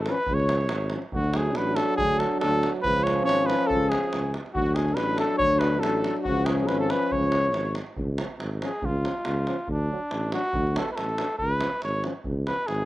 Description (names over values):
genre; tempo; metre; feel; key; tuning
balkan folk, Balkan brass band; 140 BPM; 2/4; swing 55% on 16ths; C# phrygian dominant; A4 = 439 Hz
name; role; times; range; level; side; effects
warm cornet; melody; 0.0-12.9 s; D4 to C#5; -27 LUFS; equal; none
warm flugelhorn; second line; 0.0-0.9, 3.7-7.8 s; F#4 to C#5; -31 LUFS; left 4 dB; slapback echo
mellow tuba; bass; 0.0-12.9 s; G#1 to D2; -28 LUFS; equal; none
clear euphonium; accompaniment; 0.1-12.6 s; C#4 to D4; -31 LUFS; left 5 dB; slapback echo
mellow trombone; accompaniment; 0.1-12.6 s; E#3 to F#3; -32 LUFS; right 5 dB; slapback echo
davul; percussion; 0.1-12.8 s; none; -34 LUFS; right 2 dB; slapback echo
room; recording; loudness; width
little or no reverb; recorded outdoors, with no room sound; -23 LUFS; side -16 dB against mid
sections
0.0-1.1 A section; 1.1-8.0 A section; 8.0-12.9 B section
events
cornet solo 8.0-12.9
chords
0.0 C#; 1.1 D; 2.8 C#; 4.6 D; 6.3 C#; 9.7 D; 11.4 C#